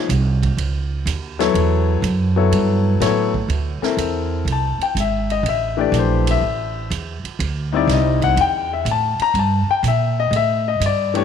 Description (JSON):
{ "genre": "modal jazz", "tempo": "123 BPM", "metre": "4/4", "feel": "swing 68% on 8ths", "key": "unclear", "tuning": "A4 = 439 Hz", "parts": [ { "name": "clear concert grand piano", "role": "accompaniment", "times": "0.0-11.2 s", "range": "E3 to Bb5", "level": "-19 LUFS", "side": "left 8 dB", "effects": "none" }, { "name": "upright bass", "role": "bass", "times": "0.1-11.2 s", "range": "G#1 to Bb2", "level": "-20 LUFS", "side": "right 2 dB", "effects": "none" }, { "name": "swinging big-band drum kit", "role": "drums", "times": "0.1-11.2 s", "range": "hi-hat, kick drum, ride cymbal, snare drum", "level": "-29 LUFS", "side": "right 11 dB", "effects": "none" } ], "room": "light reverb, small room ambience", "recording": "1960s-style stereo with parts hard left and right", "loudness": "-16 LUFS", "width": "side -8 dB against mid", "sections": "0.0-3.5 A section; 3.5-11.2 B section", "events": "none", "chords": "0.0 Bbmadd9 (rootless); 1.6 A7; 3.5 D9sus4", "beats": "0.10 0.59 1.07 | 1.56 2.04 2.53 3.01 | 3.50 3.99 4.47 4.96 | 5.45 5.93 6.42 6.91 | 7.40 7.88 8.37 8.86 | 9.35 9.84 10.33 10.81" }